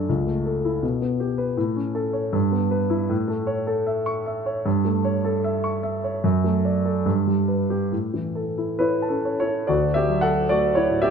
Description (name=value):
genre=classical, romantic character piece for solo piano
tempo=66-81 BPM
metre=2/4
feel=rubato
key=unclear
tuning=A4 = 441 Hz
part: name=warm concert grand piano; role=solo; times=0.0-11.1 s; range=C#2 to C#6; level=-20 LUFS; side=equal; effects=none
room=moderate recital hall reverb, RT60 1.4 s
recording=none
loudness=-20 LUFS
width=side -6 dB against mid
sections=0.0-9.7 A section; 9.7-11.1 B section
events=none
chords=0.1 A/C#; 0.8 G/B; 1.6 A; 2.3 Em/G; 3.1 A; 4.7 A7/G; 6.2 D/F#; 7.1 G; 7.9 A; 9.7 D